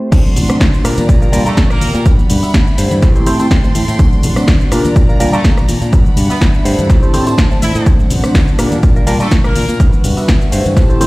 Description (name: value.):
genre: filtered disco house.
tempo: 124 BPM.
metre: 4/4.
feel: swing 54% on 16ths.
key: D mixolydian.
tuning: A4 = 440 Hz.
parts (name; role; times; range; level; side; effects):
reed electric piano; accompaniment; 0.0-11.1 s; F#3 to E5; -18 LUFS; equal; fast tremolo, phaser, sidechain pumping, low-pass filter.
warm chamber violin section; sustained chords; 0.1-11.1 s; G3 to C6; -24 LUFS; equal; sidechain pumping, low-pass filter.
fingered electric bass; bass; 0.1-11.1 s; G1 to Bb2; -17 LUFS; equal; sidechain pumping, low-pass filter.
electronic kick drum; drums; 0.1-10.9 s; none; -11 LUFS; equal; studio reverb.
house drum kit; drums; 0.1-11.1 s; crash cymbal, hi-hat, rim click, shaker, snare drum; -20 LUFS; equal; studio reverb, sidechain pumping on hats, sidechain pumping on cymbals, sidechain pumping on perc.
tambourine and congas; percussion; 0.1-11.1 s; none; -23 LUFS; left 2 dB; sidechain pumping on perc, low-pass filter on perc.
bright horn section; melody; 1.5-2.1, 5.3-9.9 s; A3 to E5; -24 LUFS; equal; sidechain pumping, low-pass filter, dub echo.
room: digital ambience.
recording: played on a big sound system in a bare room, large studio reverb.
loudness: -9 LUFS.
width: side -21 dB against mid.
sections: 0.1-11.1 A section.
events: drop 0.1-11.1.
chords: 0.1 D7; 0.8 Bb6; 2.1 Gmaj7; 3.0 Am7; 4.0 D7; 4.7 Bb6; 5.9 Gmaj7; 6.9 Am7; 7.9 D7; 8.6 Bb6; 9.8 Gmaj7.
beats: | 0.12 0.60 1.09 1.57 | 2.06 2.54 3.02 3.51 | 3.99 4.48 4.96 5.44 | 5.93 6.41 6.90 7.38 | 7.86 8.35 8.83 9.31 | 9.80 10.28 10.77.